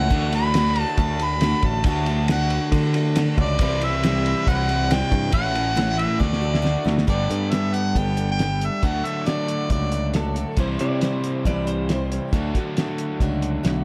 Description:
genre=folk rock and heartland rock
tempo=138 BPM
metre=4/4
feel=straight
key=D major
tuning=A4 = 445 Hz
part: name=mellow harmonica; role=melody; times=0.0-10.1 s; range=D5 to B5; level=-28 LUFS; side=equal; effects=tape echo
part: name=picked steel-string acoustic guitar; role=accompaniment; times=0.0-13.8 s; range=A2 to C5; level=-30 LUFS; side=equal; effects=none
part: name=crunchy overdriven guitar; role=riff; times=0.0-13.8 s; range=A2 to G4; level=-31 LUFS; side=equal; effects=none
part: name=picked electric bass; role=bass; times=0.0-13.8 s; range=G1 to D3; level=-26 LUFS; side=equal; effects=none
part: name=cloth-damped thuddy drum kit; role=drums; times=0.1-13.8 s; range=crash cymbal, hi-hat, kick drum, ride cymbal, snare drum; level=-26 LUFS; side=equal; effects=none
part: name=twelve-string electric guitar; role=second line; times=10.2-12.3 s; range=A4 to D5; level=-34 LUFS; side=equal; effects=spring reverb
room=light reverb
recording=dark, warm production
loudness=-22 LUFS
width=mono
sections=0.0-7.1 A section; 7.1-13.8 B section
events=drum fill 6.2-7.1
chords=0.1 D; 3.6 C; 5.3 A; 6.2 D; 7.1 Gadd9; 8.8 D; 10.6 C; 12.3 D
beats=| 0.11 0.55 0.98 1.42 | 1.86 2.29 2.73 3.17 | 3.60 4.04 4.47 4.91 | 5.34 5.78 6.22 6.65 | 7.09 7.53 7.96 8.40 | 8.84 9.27 9.71 10.15 | 10.58 11.02 11.46 11.89 | 12.33 12.77 13.20 13.64

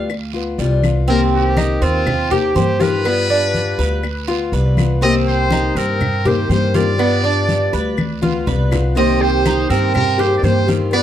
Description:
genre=latin, Cuban son and guajira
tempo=122 BPM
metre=4/4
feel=straight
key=C minor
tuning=A4 = 440 Hz
part: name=picked steel-string acoustic guitar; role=accompaniment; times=0.0-11.0 s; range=C3 to G4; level=-20 LUFS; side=left 6 dB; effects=none
part: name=Cuban tres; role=arpeggios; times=0.0-11.0 s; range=B3 to F5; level=-21 LUFS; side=right 6 dB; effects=none
part: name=upright bass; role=bass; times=0.0-11.0 s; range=C2 to G2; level=-19 LUFS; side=equal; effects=none
part: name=claves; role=percussion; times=0.1-11.0 s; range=none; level=-32 LUFS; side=left 14 dB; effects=none
part: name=congas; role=percussion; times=0.1-11.0 s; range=none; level=-22 LUFS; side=left 2 dB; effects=none
part: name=guiro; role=percussion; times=0.1-11.0 s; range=none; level=-35 LUFS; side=right 23 dB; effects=none
part: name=trumpet with metal mute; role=melody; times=1.1-11.0 s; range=F4 to Eb5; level=-22 LUFS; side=left 2 dB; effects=slapback echo
part: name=breathy mellow concert flute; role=second line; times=9.0-11.0 s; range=G4 to C5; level=-21 LUFS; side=right 15 dB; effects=none
room=light reverb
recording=dry, close 1970s-style studio recording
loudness=-14 LUFS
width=side -10 dB against mid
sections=0.0-1.1 A section; 1.1-11.0 B section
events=Cuban tres solo 0.0-1.1; drum fill 0.8, 8.0-9.0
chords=0.0 G7; 1.1 Cm7; 3.1 G7; 5.0 Cm7; 7.0 G7; 9.0 Cm7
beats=0.10 0.59 | 1.08 1.57 2.07 2.56 | 3.05 3.55 4.04 4.53 | 5.02 5.52 6.01 6.50 | 6.99 7.49 7.98 8.47 | 8.96 9.46 9.95 10.44 | 10.93

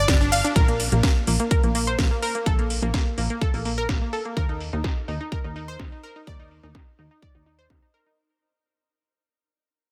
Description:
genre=progressive house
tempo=126 BPM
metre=4/4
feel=straight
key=unclear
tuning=A4 = 440 Hz
part: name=analog pluck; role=arpeggios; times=0.0-8.1 s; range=Bb3 to F5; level=-29 LUFS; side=equal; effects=chorus, sidechain pumping, tape echo
part: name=plucky analog bass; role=bass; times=0.0-7.8 s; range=G1 to Eb2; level=-28 LUFS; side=equal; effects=sidechain pumping
part: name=electronic kick drum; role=drums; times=0.1-7.8 s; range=none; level=-24 LUFS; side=equal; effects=none
part: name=house drum kit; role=drums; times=0.1-8.2 s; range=hi-hat, shaker, snare drum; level=-31 LUFS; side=equal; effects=low-pass filter on hats, low-pass filter on perc, low-pass filter on snare, low-pass filter on room
room=light reverb, digital ambience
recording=none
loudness=-23 LUFS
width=mono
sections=0.6-8.2 A section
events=band accent 0.1; fade-out 0.6-8.2; filter sweep on drum 0.6-8.2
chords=0.0 G5; 0.6 N.C.; 4.4 Eb5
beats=0.08 | 0.56 1.03 1.51 1.99 | 2.46 2.94 3.42 3.89 | 4.37 4.84 5.32 5.80 | 6.27 6.75 7.22 7.70

